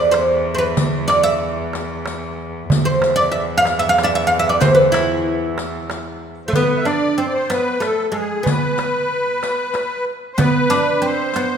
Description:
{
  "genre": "Arabic maqam ensemble",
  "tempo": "94 BPM",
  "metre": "3/4",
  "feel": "straight",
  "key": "E maqam hijaz",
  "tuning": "A4 = 441 Hz",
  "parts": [
    { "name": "oud", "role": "melody", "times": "0.0-11.6 s", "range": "G#3 to F5+25c", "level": "-17 LUFS", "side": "right 1 dB", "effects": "none" },
    { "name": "rich cello", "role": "drone", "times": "0.0-6.6 s", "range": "E2", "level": "-25 LUFS", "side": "left 1 dB", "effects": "none" },
    { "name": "darbuka", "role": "percussion", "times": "0.1-11.5 s", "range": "none", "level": "-22 LUFS", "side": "right 2 dB", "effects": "none" },
    { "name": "riq", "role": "percussion", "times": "0.1-11.5 s", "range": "none", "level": "-29 LUFS", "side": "left 5 dB", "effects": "none" },
    { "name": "musette accordion", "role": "second line", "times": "6.5-11.6 s", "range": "G#4 to E5", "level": "-20 LUFS", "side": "left 1 dB", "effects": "none" }
  ],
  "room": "moderate scoring stage reverb, RT60 1.8 s",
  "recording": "minimal, uncompressed stereo recording",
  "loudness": "-15 LUFS",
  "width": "side -7 dB against mid",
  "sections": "0.0-6.5 A section; 6.5-11.6 B section",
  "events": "none",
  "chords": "none"
}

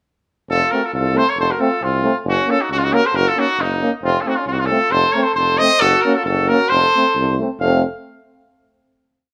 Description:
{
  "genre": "balkan folk",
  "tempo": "135 BPM",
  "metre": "2/4",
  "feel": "swing 55% on 16ths",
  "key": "F phrygian dominant",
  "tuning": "A4 = 442 Hz",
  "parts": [
    { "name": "bright trumpet", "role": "melody", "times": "0.5-7.8 s", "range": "Eb4 to F5", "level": "-19 LUFS", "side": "equal", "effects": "slapback echo, plate reverb" },
    { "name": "mellow flugelhorn", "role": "second line", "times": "0.5-7.8 s", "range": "Bb3 to C5", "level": "-27 LUFS", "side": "equal", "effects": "plate reverb" },
    { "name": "clear tuba", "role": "bass", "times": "0.5-7.8 s", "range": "F1 to Db2", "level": "-23 LUFS", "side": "equal", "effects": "none" },
    { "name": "clear euphonium", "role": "accompaniment", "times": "0.7-7.8 s", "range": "C4 to Db4", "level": "-26 LUFS", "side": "equal", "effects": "plate reverb" },
    { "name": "warm trombone", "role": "accompaniment", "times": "0.7-7.8 s", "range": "A3 to Bb3", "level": "-26 LUFS", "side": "equal", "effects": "plate reverb" }
  ],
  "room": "moderate small room reverb, RT60 0.6 s",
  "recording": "rough home demo mix",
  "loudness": "-17 LUFS",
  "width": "mono",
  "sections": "0.5-7.6 A section; 7.6-8.5 final chord",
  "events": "none",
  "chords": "0.5 F; 2.3 Gb; 4.0 F; 5.8 Gb; 6.7 F"
}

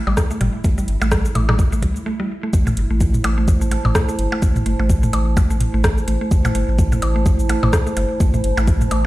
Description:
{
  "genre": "minimal techno",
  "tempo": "127 BPM",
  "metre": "4/4",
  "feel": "swing 57% on 16ths",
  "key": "A minor",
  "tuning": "A4 = 438 Hz",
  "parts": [
    { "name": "swarming drone", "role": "texture", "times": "0.0-2.1 s", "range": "E4", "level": "-38 LUFS", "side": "right 1 dB", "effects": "built-in reverb, sidechain pumping" },
    { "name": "mallet-like synth pluck", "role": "riff", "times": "0.1-9.0 s", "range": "G3 to A3", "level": "-25 LUFS", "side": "equal", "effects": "chorus, sidechain pumping, tape echo" },
    { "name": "round analog bass", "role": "bass", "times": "0.1-9.1 s", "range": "G1 to A1", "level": "-20 LUFS", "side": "equal", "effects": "sidechain pumping" },
    { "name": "electronic percussion blips and toms", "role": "percussion", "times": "0.1-9.0 s", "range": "none", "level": "-23 LUFS", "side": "equal", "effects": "overdrive, ping-pong delay" },
    { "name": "booming analog drum machine", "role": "drums", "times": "0.2-9.0 s", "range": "hi-hat, rim click, shaker", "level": "-26 LUFS", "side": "equal", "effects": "none" },
    { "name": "electronic kick drum", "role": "drums", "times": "0.2-8.8 s", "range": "none", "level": "-17 LUFS", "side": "equal", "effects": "overdrive" },
    { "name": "warbly tape-like pad", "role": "texture", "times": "2.8-9.1 s", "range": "E4 to A5", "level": "-26 LUFS", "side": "right 2 dB", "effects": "chorus, built-in reverb, sidechain pumping" }
  ],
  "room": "light reverb",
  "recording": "played on a big sound system in a bare room, stone room reverb",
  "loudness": "-15 LUFS",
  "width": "side -17 dB against mid",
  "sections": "0.0-2.5 A section; 2.5-9.1 B section",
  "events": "break 2.1-2.5; drop 2.5-9.1",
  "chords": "0.0 A5"
}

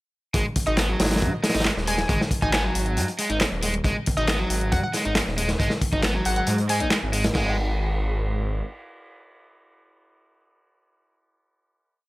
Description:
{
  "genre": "breakbeat, breaks",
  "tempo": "137 BPM",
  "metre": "4/4",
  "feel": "straight",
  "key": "G# minor pentatonic",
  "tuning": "A4 = 440 Hz",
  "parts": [
    { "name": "overdriven semi-hollow guitar", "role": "riff", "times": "0.3-7.6 s", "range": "F#3 to D#4", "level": "-27 LUFS", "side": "equal", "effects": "digital delay" },
    { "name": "phased detuned saw bass", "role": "bass", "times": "0.3-8.6 s", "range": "D#1 to G#2", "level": "-26 LUFS", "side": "equal", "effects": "phaser" },
    { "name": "crunchy breakbeat drum kit", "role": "drums", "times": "0.3-7.5 s", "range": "crash cymbal, hi-hat, kick drum, snare drum", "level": "-26 LUFS", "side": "equal", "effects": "none" },
    { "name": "house drum kit", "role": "drums", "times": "0.3-7.3 s", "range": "handclaps, hi-hat", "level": "-29 LUFS", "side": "left 1 dB", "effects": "none" },
    { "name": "hollow square pluck", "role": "melody", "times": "0.7-7.0 s", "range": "D#5 to G#5", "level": "-30 LUFS", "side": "equal", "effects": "chorus, old record sound, digital delay" }
  ],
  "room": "light reverb",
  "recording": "none",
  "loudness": "-21 LUFS",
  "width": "side -20 dB against mid",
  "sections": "0.3-7.3 drop; 7.3-10.9 final note",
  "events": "drop 0.3-7.3",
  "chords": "0.3 G#5; 7.3 N.C."
}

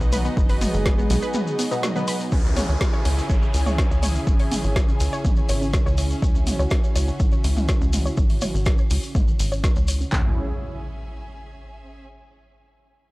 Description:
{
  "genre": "melodic techno",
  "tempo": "123 BPM",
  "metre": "4/4",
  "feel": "straight",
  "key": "C# minor",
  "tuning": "A4 = 440 Hz",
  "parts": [
    { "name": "lush unison pad", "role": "sustained chords", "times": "0.0-10.4 s", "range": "C#3 to G#4", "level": "-32 LUFS", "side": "equal", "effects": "chorus, sidechain pumping" },
    { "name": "tight sequencer bass", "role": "bass", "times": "0.0-10.4 s", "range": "F#1 to C#2", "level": "-24 LUFS", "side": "equal", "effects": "tube saturation, sidechain pumping" },
    { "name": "shekere", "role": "percussion", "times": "0.0-10.1 s", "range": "none", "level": "-36 LUFS", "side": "left 2 dB", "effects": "none" },
    { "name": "bright studio string section", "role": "texture", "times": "0.0-12.0 s", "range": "B3 to G#5", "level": "-38 LUFS", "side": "equal", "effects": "sidechain pumping" },
    { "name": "analog pluck", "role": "arpeggios", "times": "0.1-10.4 s", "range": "B3 to B5", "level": "-32 LUFS", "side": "equal", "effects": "chorus, sidechain pumping, analog delay" },
    { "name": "deep house drum kit", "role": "drums", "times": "0.1-10.0 s", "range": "hi-hat, snare drum, toms", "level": "-29 LUFS", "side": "equal", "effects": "sidechain pumping on toms, sidechain pumping on hats" },
    { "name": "deep house drum kit", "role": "drums", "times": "0.4-10.2 s", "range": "handclaps, kick drum", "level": "-21 LUFS", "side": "equal", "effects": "overdrive" },
    { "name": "mellow synth brass", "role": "melody", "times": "0.6-2.2 s", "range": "G#3 to G#4", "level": "-30 LUFS", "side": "right 1 dB", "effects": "chorus, vintage 12-bit sampler grit, analog delay" },
    { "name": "synth brass stab", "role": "stabs", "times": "1.1-2.3 s", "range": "B2 to B3", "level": "-29 LUFS", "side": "right 1 dB", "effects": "chorus, phaser, sidechain pumping, analog delay" },
    { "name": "analog drone", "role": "drone", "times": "3.2-10.2 s", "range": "C#3 to C#4", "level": "-38 LUFS", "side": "equal", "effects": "none" },
    { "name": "downlifter and impact", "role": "sound effects", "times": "2.3-6.2, 10.2-12.1 s", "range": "none", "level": "-34 LUFS", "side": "equal", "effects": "none" }
  ],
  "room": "digital ambience",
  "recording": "dry, gritty hardware recording, transformer saturation, cassette tape",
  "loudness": "-19 LUFS",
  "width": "side -21 dB against mid",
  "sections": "0.0-2.3 A section; 2.3-10.1 B section; 10.1-12.1 C section",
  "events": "drop 0.0-2.3; break 1.3-2.3; fade-out on string section 2.3-10.1; filter sweep on synth arpeggio sound 2.3-10.1; filter sweep on analog synth pad 2.3-10.1",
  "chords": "0.0 B; 2.3 C#m"
}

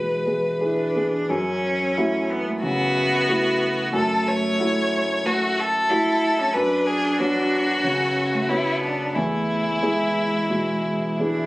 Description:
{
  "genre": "neoclassical piano and strings",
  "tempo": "91 BPM",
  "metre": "4/4",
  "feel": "rubato",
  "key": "F# minor",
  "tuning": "A4 = 440 Hz",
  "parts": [
    { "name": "rich violin", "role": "melody", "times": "0.0-11.5 s", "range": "D4 to C#5", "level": "-23 LUFS", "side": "left 1 dB", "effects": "plate reverb" },
    { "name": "clear cello", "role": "second line", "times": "0.0-11.5 s", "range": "G#3 to E4", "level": "-26 LUFS", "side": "right 1 dB", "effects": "none" },
    { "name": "warm upright piano", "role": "accompaniment", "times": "0.0-11.5 s", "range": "E2 to C#5", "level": "-24 LUFS", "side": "equal", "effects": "none" }
  ],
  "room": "moderate small room reverb, RT60 0.5 s",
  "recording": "recorded on a phone in the room, studio ambience, compression",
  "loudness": "-19 LUFS",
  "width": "side -19 dB against mid",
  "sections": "0.0-1.3 A section; 1.3-11.5 B section",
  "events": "none",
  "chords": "0.0 E; 1.3 F#m7; 6.5 Bmadd9/F#; 9.2 E"
}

